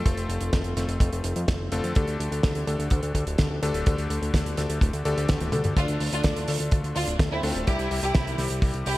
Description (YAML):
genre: italo disco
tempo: 126 BPM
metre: 4/4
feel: straight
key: unclear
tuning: A4 = 440 Hz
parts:
  - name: bright electric grand piano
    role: stabs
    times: 0.0-9.0 s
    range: C3 to A4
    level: -31 LUFS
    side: left 3 dB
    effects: tape echo
  - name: fat analog bass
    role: bass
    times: 0.0-9.0 s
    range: D1 to F2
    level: -28 LUFS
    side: equal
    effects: none
  - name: damped 70s drum kit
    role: drums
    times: 0.1-9.0 s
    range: hi-hat, snare drum, toms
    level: -31 LUFS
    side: right 1 dB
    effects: small room reverb, gated reverb
  - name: kick drum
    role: drums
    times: 0.1-8.7 s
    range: none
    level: -23 LUFS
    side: equal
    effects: small room reverb
  - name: bright symphonic violin section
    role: melody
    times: 5.8-9.0 s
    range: C4 to G4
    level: -29 LUFS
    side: equal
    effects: tape echo
room: light reverb, small room ambience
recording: none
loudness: -23 LUFS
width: side -17 dB against mid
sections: 0.0-5.8 A section; 5.8-9.0 B section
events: drum fill 5.3-5.8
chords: 0.0 F; 2.0 Dsus4; 5.8 Dm; 7.7 C